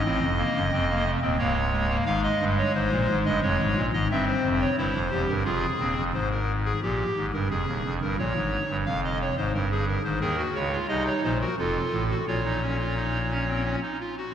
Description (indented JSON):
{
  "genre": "classical, baroque-style 3-part fugue for pipe organ",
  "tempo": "88 BPM",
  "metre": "3/4",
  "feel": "straight",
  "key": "Bb minor",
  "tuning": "A4 = 441 Hz",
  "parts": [
    { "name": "pipe organ, clarinet reed", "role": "solo", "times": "0.0-14.3 s", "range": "Db1 to F5", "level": "-23 LUFS", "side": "equal", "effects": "none" }
  ],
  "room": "wet church reverb, RT60 3.4 s",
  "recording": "none",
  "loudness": "-23 LUFS",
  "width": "side -9 dB against mid",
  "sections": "0.0-6.1 A section; 6.1-14.3 B section",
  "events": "none",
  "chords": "0.0 F; 1.4 Bbm/Db; 2.1 Fm (rootless); 3.4 Bbm/F; 4.1 C; 5.5 Fm; 6.1 Abmaj7(no3); 7.5 Fm11/Eb; 8.2 Gm7b5; 9.5 C5/G; 10.2 Ebm; 11.6 F; 12.3 Bbm"
}